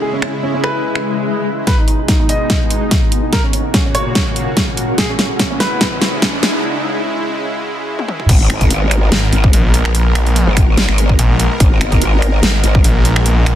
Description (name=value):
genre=heavy wobble dubstep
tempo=145 BPM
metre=4/4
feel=swing 54% on 16ths, half-time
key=G# minor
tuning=A4 = 440 Hz
part: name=warm baby grand piano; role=melody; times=0.0-6.6 s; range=C#4 to D#5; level=-22 LUFS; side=right 1 dB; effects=tape echo
part: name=supersaw pad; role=sustained chords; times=0.0-13.6 s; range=B2 to A#4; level=-23 LUFS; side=equal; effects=sidechain pumping, low-pass filter
part: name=granular cloud pad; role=texture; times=0.0-13.6 s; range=A#2 to F#5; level=-25 LUFS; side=left 1 dB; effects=built-in reverb, sidechain pumping
part: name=dubstep drum kit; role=drums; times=0.2-13.6 s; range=crash cymbal, finger snaps, hi-hat, snare drum, toms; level=-17 LUFS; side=equal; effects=soft clipping on snare
part: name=swell and riser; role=sound effects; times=1.0-6.6 s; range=none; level=-24 LUFS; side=left 2 dB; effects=none
part: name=electronic kick drum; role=drums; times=1.7-12.8 s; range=none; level=-14 LUFS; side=equal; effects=none
part: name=growl bass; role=bass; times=8.3-12.8 s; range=G#1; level=-14 LUFS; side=equal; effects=chorus, overdrive
part: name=snarling distorted saw bass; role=bass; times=9.1-13.6 s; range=G#1 to A#1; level=-13 LUFS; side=equal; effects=distortion, overdrive
room=light reverb, digital ambience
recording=dense, heavily limited modern master, high-pass filter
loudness=-12 LUFS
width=side -11 dB against mid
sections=0.0-1.7 A section; 1.7-8.3 B section; 8.3-13.6 C section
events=filter sweep 0.0-1.7, 1.7-8.3; swell 1.0-1.7; build-up 1.7-8.3; drum fill 1.7-6.6, 8.0-8.3; riser 1.7-6.6; filter sweep on supersaw synth 1.7-8.3; break 6.6-8.3; drop 8.3-13.6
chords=0.0 C#m; 1.7 G#m; 3.3 F#/A#; 5.0 C#m; 8.3 G#madd9